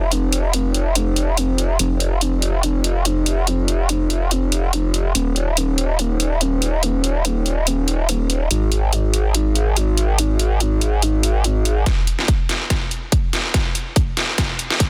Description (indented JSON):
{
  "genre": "heavy wobble dubstep",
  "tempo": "143 BPM",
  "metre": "4/4",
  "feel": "swing 54% on 16ths, half-time",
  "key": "F minor",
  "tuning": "A4 = 440 Hz",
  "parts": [
    { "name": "growl bass", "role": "bass", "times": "0.0-11.8 s", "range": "Eb1 to Ab1", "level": "-20 LUFS", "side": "equal", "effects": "chorus, overdrive" },
    { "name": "dubstep drum kit", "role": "drums", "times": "0.1-14.9 s", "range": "hi-hat, snare drum", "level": "-24 LUFS", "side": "equal", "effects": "overdrive, high-pass filter on hats, high-pass filter on snare, high-pass filter on cymbals, high-pass filter on room" },
    { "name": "electronic kick drum", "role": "drums", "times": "11.9-14.9 s", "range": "none", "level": "-22 LUFS", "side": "equal", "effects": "overdrive" }
  ],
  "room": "little or no reverb",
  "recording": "dense, heavily limited modern master",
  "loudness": "-19 LUFS",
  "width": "mono",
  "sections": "0.0-11.9 A section; 11.9-14.9 B section",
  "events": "build-up 11.9-14.9; drum fill 11.9-14.9; filter sweep 11.9-14.9",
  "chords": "none",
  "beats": "| 0.12 0.54 0.95 1.37 | 1.79 2.21 2.63 3.05 | 3.47 3.89 4.31 4.73 | 5.15 5.57 5.99 6.41 | 6.83 7.25 7.67 8.09 | 8.51 8.93 9.35 9.77 | 10.19 10.60 11.02 11.44 | 11.86 12.28 12.70 13.12 | 13.54 13.96 14.38 14.80"
}